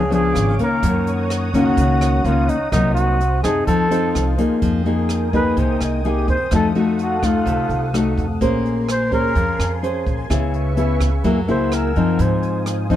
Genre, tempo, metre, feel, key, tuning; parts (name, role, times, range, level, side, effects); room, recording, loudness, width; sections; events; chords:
bossa nova; 127 BPM; 4/4; straight; F minor from 4.6 s; A4 = 440 Hz
mellow flugelhorn; melody; 0.0-12.7 s; Eb4 to C5; -22 LUFS; right 1 dB
nylon-string guitar; accompaniment; 0.0-13.0 s; Gb2 to C5; -19 LUFS; left 2 dB
analog string pad; sustained chords; 0.0-13.0 s; A4 to Fb6; -30 LUFS; right 1 dB; ensemble chorus
upright bass; bass; 0.0-13.0 s; Ab1 to Ab2; -22 LUFS; right 1 dB
jazz brush drum kit; drums; 0.1-13.0 s; hi-hat, kick drum, rim click; -26 LUFS; right 1 dB
light reverb; dark, warm production; -16 LUFS; side -12 dB against mid
0.0-4.6 A section; 4.6-13.0 B section
flugelhorn solo 4.6-13.0
0.0 Db7b9; 0.8 Gb6; 2.7 Cm7b5; 3.7 F7; 4.6 Fm11; 6.5 F7b9; 8.4 Bbm9; 10.3 Dbm7; 11.2 Gb9; 12.2 Ab6